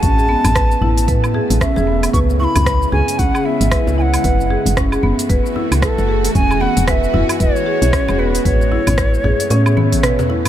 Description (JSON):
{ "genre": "organic downtempo", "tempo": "114 BPM", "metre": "4/4", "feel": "swing 59% on 16ths", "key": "unclear", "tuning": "A4 = 440 Hz", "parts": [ { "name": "bright reedy ney", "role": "melody", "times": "0.0-10.3 s", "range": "A4 to C#6", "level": "-21 LUFS", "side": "right 1 dB", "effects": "ping-pong delay" }, { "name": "bowed-like drone", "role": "sustained chords", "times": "0.0-10.5 s", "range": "C#3 to F#4", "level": "-23 LUFS", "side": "right 1 dB", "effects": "built-in reverb, sidechain pumping" }, { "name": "marimba with medium mallets", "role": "arpeggios", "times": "0.0-10.4 s", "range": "B3 to B4", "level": "-20 LUFS", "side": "left 1 dB", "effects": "ping-pong delay" }, { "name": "woody FM bass", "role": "bass", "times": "0.0-10.5 s", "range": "E1 to A2", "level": "-17 LUFS", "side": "equal", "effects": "none" }, { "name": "afro-pop drum kit", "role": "drums", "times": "0.0-10.5 s", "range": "hi-hat, rim click, shaker, toms, woodblock", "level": "-23 LUFS", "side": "equal", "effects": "none" }, { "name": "electronic kick drum", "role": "drums", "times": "0.0-9.1 s", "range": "none", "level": "-19 LUFS", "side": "equal", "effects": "none" }, { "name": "djembe", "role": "percussion", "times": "0.0-10.5 s", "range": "none", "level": "-24 LUFS", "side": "left 2 dB", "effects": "none" } ], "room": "light reverb", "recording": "none", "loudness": "-13 LUFS", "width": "side -11 dB against mid", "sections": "0.0-10.5 A section", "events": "kick drops out 9.5-10.5; drum fill 9.8-10.5", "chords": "0.0 Aadd9; 2.1 C#m; 4.2 F#m7; 6.3 Eadd9; 8.5 Aadd9" }